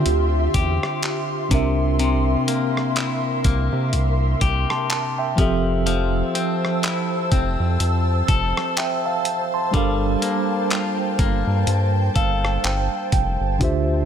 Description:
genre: contemporary R&B.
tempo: 62 BPM.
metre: 4/4.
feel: swing 58% on 16ths.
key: unclear.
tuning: A4 = 439 Hz.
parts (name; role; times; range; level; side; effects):
mellow tine electric piano; accompaniment; 0.0-14.1 s; C3 to C6; -24 LUFS; right 3 dB; medium stereo tremolo.
ethereal airy pad; sustained chords; 0.0-14.1 s; F4 to E6; -26 LUFS; equal; ensemble chorus, built-in reverb.
clean electric guitar; arpeggios; 0.0-14.1 s; C3 to A4; -27 LUFS; left 7 dB; none.
round analog bass; bass; 0.0-14.0 s; F1 to C3; -21 LUFS; equal; none.
dusty soul sampler-style drum kit; drums; 0.1-13.9 s; handclaps, hi-hat, kick drum, rim click; -23 LUFS; equal; none.
room: light reverb.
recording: none.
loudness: -18 LUFS.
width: side -8 dB against mid.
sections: 0.0-13.6 A section.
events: tine electric piano fill 11.7-13.6.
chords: 0.0 Dm11; 1.5 C7; 5.4 Fmaj7; 9.7 Gm9.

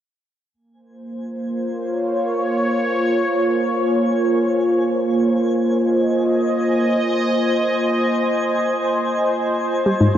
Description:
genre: ambient, sequencer-driven space music.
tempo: free time.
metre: none.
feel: none.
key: Bb minor.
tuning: A4 = 441 Hz.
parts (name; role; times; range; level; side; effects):
sweeping resonant pad; sustained chords; 0.5-10.2 s; G3 to Eb5; -17 LUFS; equal; chorus.
twinkling granular texture; texture; 1.2-10.2 s; Ab5; -33 LUFS; left 1 dB; built-in reverb.
analog pluck; riff; 9.9-10.2 s; Ab2 to G3; -14 LUFS; left 1 dB; chorus, vintage 12-bit sampler grit, tape echo.
room: wet huge ambient reverb, RT60 9.2 s.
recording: worn, warbling old tape, cassette tape, warbly pitch drift.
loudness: -17 LUFS.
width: side -10 dB against mid.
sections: 0.5-10.2 A section.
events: fade-in on synth texture 0.5-10.2.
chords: 0.5 Bbmadd9.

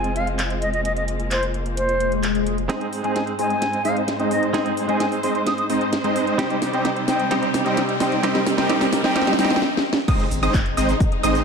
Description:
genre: EDM, festival progressive house.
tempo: 130 BPM.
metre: 4/4.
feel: straight.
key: unclear.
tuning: A4 = 440 Hz.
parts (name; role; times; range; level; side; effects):
bright wooden flute; melody; 0.0-9.6 s; C5 to Eb6; -26 LUFS; left 1 dB; ping-pong delay.
direct-recorded clean electric guitar; accompaniment; 0.0-9.6 s; G3 to Ab4; -27 LUFS; right 3 dB; tremolo, sidechain pumping, ping-pong delay.
dark symphonic string section; sustained chords; 0.0-11.4 s; Ab2 to C5; -30 LUFS; left 2 dB; sidechain pumping.
saturated sub bass; bass; 0.0-2.7, 10.3-11.4 s; F1 to Ab1; -26 LUFS; equal; tube saturation, sidechain pumping.
house drum kit; drums; 0.0-11.4 s; cabasa, crash cymbal, handclaps, hi-hat, snare drum; -25 LUFS; equal; none.
swell, riser and impact; sound effects; 1.9-11.4 s; none; -30 LUFS; left 3 dB; none.
supersaw chords; riff; 2.7-11.4 s; G3 to Eb5; -23 LUFS; right 1 dB; sidechain pumping, low-pass filter, ping-pong delay.
wide unison pluck; arpeggios; 10.1-11.4 s; Eb6; -26 LUFS; right 2 dB; vintage 12-bit sampler grit, sidechain pumping, ping-pong delay.
electronic kick drum; drums; 10.1-11.1 s; none; -20 LUFS; equal; none.
room: moderate lush hall reverb, RT60 1.6 s.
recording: none.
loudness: -18 LUFS.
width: side -6 dB against mid.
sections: 0.0-2.7 A section; 2.7-10.1 B section; 10.1-11.4 C section.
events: filter sweep on string section 0.0-2.7; swell 1.9-2.7; build-up 2.7-10.1; drum fill 2.7-9.6, 9.6-10.1; filter sweep on supersaw synth 2.7-10.1; riser 5.9-9.6; stop 9.6-10.1; drop 10.1-11.4; impact 10.1-11.4.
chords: 0.0 Fm; 2.7 Ab; 6.4 Cm; 10.1 Ab.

